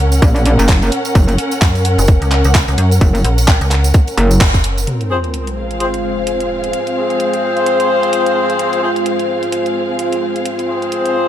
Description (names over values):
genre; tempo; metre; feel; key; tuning
bass house; 129 BPM; 4/4; swing 58% on 16ths; F phrygian; A4 = 441 Hz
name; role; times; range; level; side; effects
dark analog pad; sustained chords; 1.0-11.3 s; Ab3 to Db5; -21 LUFS; equal; chorus, phaser, sidechain pumping
metallic FM bass; bass; 0.0-4.9 s; Gb1 to Gb2; -13 LUFS; equal; tube saturation, sidechain pumping
dark symphonic string section; texture; 0.0-11.3 s; C4 to Gb5; -20 LUFS; equal; sidechain pumping
garage drum kit; drums; 0.1-11.1 s; handclaps, hi-hat; -20 LUFS; equal; overdrive, small room ambience
tambourine; percussion; 0.1-4.9 s; none; -27 LUFS; right 4 dB; none
metallic wobble bass; bass; 0.2-4.4 s; Gb1 to Bb1; -12 LUFS; equal; chorus, overdrive, sidechain pumping
electronic kick drum; drums; 0.2-4.6 s; none; -11 LUFS; equal; overdrive, small room ambience
sub drop; sound effects; 4.9-6.7 s; none; -23 LUFS; equal; none
warm horn section; stabs; 5.1-11.3 s; C4 to C5; -17 LUFS; left 2 dB; sidechain pumping, ping-pong delay
room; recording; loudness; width
light reverb; none; -12 LUFS; side -11 dB against mid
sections
0.0-4.9 A section; 4.9-11.3 B section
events
drop 0.0-4.9; band accent 4.4; impact 4.9-6.7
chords
0.0 Gb; 4.9 Fm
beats
0.22 0.69 | 1.15 1.62 2.08 2.55 | 3.01 3.48 3.94 4.41 | 4.87 5.34 5.80 6.27 | 6.73 7.20 7.66 8.13 | 8.59 9.06 9.53 9.99 | 10.46 10.92